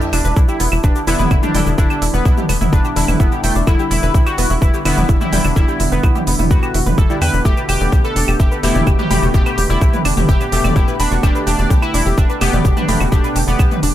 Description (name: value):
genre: melodic techno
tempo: 127 BPM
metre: 4/4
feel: straight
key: E minor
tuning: A4 = 441 Hz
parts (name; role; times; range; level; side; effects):
- resonant sweep polysynth; melody; 0.0-13.7 s; A3 to B4; -22 LUFS; equal; chorus, cassette tape, sidechain pumping, analog delay
- warm analog pad; sustained chords; 0.0-13.9 s; D3 to G4; -26 LUFS; right 2 dB; lush chorus, sidechain pumping
- tight sequenced synth; arpeggios; 0.0-13.9 s; B3 to B5; -24 LUFS; left 1 dB; chorus, sidechain pumping, dub echo
- synth brass stab; stabs; 0.0-13.9 s; B2 to G4; -24 LUFS; left 3 dB; chorus, sidechain pumping, dub echo
- techno drum kit; drums; 0.0-13.9 s; claves, hi-hat, shaker, toms; -21 LUFS; right 1 dB; none
- sub drop; sound effects; 0.0-1.8 s; none; -30 LUFS; equal; none
- tight sequencer bass; bass; 0.1-13.9 s; E1 to E2; -18 LUFS; equal; sidechain pumping
- electronic kick drum; drums; 0.4-13.7 s; none; -14 LUFS; equal; none
room: digital ambience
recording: echo-heavy mix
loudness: -12 LUFS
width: side -12 dB against mid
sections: 0.0-13.9 A section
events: impact 0.0-1.8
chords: 0.0 Em7; 7.5 Gadd9/E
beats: 0.36 0.84 1.31 | 1.78 2.25 2.73 3.20 | 3.67 4.14 4.62 5.09 | 5.56 6.04 6.51 6.98 | 7.45 7.92 8.40 8.87 | 9.34 9.81 10.29 10.76 | 11.23 11.70 12.18 12.65 | 13.12 13.59